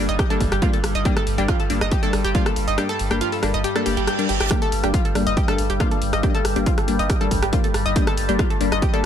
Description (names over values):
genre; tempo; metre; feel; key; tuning
driving peak-time techno; 139 BPM; 4/4; straight; G minor; A4 = 439 Hz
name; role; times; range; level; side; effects
wavetable chord stab; stabs; 0.0-9.1 s; G3 to D4; -26 LUFS; left 4 dB; sidechain pumping, tape echo
saturated sub bass; bass; 0.0-8.8 s; G1; -26 LUFS; equal; overdrive, sidechain pumping, low-pass filter
overtone-sweeping drone; drone; 0.0-9.1 s; G2 to G3; -28 LUFS; equal; chorus, built-in reverb, sidechain pumping
analog pluck; riff; 0.1-9.0 s; F4 to G5; -25 LUFS; equal; chorus, tube saturation, sidechain pumping, ping-pong delay
punchy analog drum machine; drums; 0.1-9.0 s; hi-hat, rim click; -28 LUFS; equal; sidechain pumping on hats
electronic kick drum; drums; 0.2-8.9 s; none; -21 LUFS; equal; overdrive
reverse cymbal; sound effects; 3.8-4.5 s; none; -28 LUFS; right 8 dB; none
room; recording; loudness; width
digital ambience; none; -18 LUFS; side -9 dB against mid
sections
0.0-9.1 A section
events
kick drops out 2.8-4.5; reverse cymbal 3.8-4.5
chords
0.0 Gm